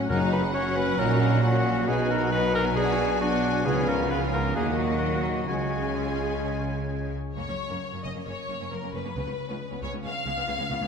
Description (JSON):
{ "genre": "classical, dramatic, fast romantic movement for symphony orchestra", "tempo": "134 BPM", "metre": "4/4", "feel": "rubato", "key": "F# major", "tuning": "A4 = 439 Hz", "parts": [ { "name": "clear symphonic violin section", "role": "melody", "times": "0.0-10.9 s", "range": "A#4 to G#5", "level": "-35 LUFS", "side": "left 4 dB", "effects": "none" }, { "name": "clear symphonic violin section", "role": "second line", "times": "0.0-10.9 s", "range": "A#3 to E#5", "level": "-36 LUFS", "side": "left 3 dB", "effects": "none" }, { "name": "warm oboe", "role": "second line", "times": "0.0-7.1 s", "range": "E#5 to G#5", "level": "-37 LUFS", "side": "equal", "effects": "none" }, { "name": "clear symphonic viola section", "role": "accompaniment", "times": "0.0-10.8 s", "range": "A#3 to G#4", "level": "-35 LUFS", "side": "right 2 dB", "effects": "none" }, { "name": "warm bassoon", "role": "accompaniment", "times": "0.0-7.1 s", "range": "G#3 to D#4", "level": "-33 LUFS", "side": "right 1 dB", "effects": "none" }, { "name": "concert harp", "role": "arpeggios", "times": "0.0-10.9 s", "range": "F#2 to C#5", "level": "-35 LUFS", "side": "left 11 dB", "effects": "none" }, { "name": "clear studio double bass section", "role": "bass", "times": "0.0-10.7 s", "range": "F#1 to D#2", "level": "-31 LUFS", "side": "right 3 dB", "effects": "none" }, { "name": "rich studio cello section", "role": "bass", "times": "0.0-10.9 s", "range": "C#2 to D#3", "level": "-33 LUFS", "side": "right 2 dB", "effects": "none" }, { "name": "clear clarinet", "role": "second line", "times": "0.1-7.1 s", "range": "E#4 to C#5", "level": "-31 LUFS", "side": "left 1 dB", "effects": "none" }, { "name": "silver concert flute", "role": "second line", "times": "0.1-7.1 s", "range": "E#5 to C#6", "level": "-35 LUFS", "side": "left 2 dB", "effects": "none" }, { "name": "mellow French horn section", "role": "sustained chords", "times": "0.1-7.1 s", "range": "G#3 to F#4", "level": "-34 LUFS", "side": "left 4 dB", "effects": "none" }, { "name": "warm trombone section", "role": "sustained chords", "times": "0.1-7.1 s", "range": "G#2 to G#3", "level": "-35 LUFS", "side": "right 4 dB", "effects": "none" }, { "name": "timpani", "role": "percussion", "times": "0.1-0.7, 3.7-4.3, 9.2-9.8 s", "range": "F#2 to C#3", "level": "-35 LUFS", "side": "left 2 dB", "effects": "none" } ], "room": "wet scoring stage reverb, RT60 2.2 s", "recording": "none", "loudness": "-24 LUFS", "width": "side -6 dB against mid", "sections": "0.0-7.4 A section; 7.4-10.9 B section", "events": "none", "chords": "0.1 F#5; 1.0 F#/A#; 1.9 G#m7/B; 2.8 G#m7b5/B; 3.7 C#7; 4.6 D#m; 5.5 C#; 7.4 F#; 9.2 C#7b9" }